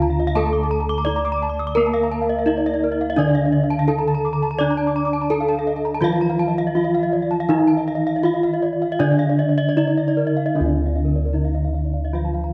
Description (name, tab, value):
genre	gamelan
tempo	76-85 BPM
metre	4/4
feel	straight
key	D pelog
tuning	A4 = 438 Hz
part	gamelan-type bronze metallophone	melody	0.0-12.5 s	D4 to D5	-24 LUFS	equal	none
part	gamelan-type bronze metallophone	accompaniment	0.0-12.5 s	D3 to D4	-29 LUFS	equal	none
part	gamelan-type bronze metallophone	arpeggios	0.0-12.4 s	Bb4 to Eb6+35c	-31 LUFS	equal	none
part	gamelan-type bossed gongs	bass	0.0-12.5 s	D2 to D5	-25 LUFS	equal	none
part	gamelan-type bronze metallophone	arpeggios	0.1-12.5 s	Bb4 to D6	-29 LUFS	equal	slapback echo
room	moderate recital hall reverb, RT60 1.8 s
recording	worn, warbling old tape, cassette tape, warbly pitch drift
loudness	-20 LUFS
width	mono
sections	0.0-10.6 A section; 10.6-12.5 B section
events	none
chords	none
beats	0.36 1.07 | 1.77 2.48 3.18 3.89 | 4.59 5.30 6.02 6.75 | 7.49 8.24 9.00 9.77 | 10.56 11.35 12.13